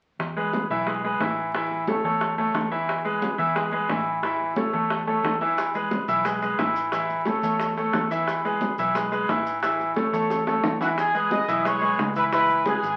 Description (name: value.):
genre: latin, salsa.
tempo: 178 BPM.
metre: 4/4.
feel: straight.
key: E major.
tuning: A4 = 440 Hz.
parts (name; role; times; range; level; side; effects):
vintage muted fingered electric bass; bass; 0.2-13.0 s; G#1 to E2; -39 LUFS; equal; none.
bongos; percussion; 0.2-12.8 s; none; -33 LUFS; equal; none.
congas; percussion; 0.2-13.0 s; none; -36 LUFS; equal; none.
bright grand piano; accompaniment; 0.4-12.9 s; E3 to E5; -26 LUFS; equal; none.
maracas; percussion; 5.6-13.0 s; none; -50 LUFS; equal; none.
clear trumpet section; melody; 10.8-13.0 s; F#4 to D#6; -26 LUFS; equal; none.
room: wet studio reverb, RT60 0.5 s.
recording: very old 78 rpm record, vinyl crackle.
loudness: -24 LUFS.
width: mono.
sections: 0.2-11.0 A section; 11.0-13.0 B section.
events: drum fill 10.3-11.0.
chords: 0.2 E; 1.5 A; 2.9 E; 4.2 A; 5.6 E; 6.9 A; 8.3 E; 9.6 A; 11.0 Emaj7; 12.3 C#m7.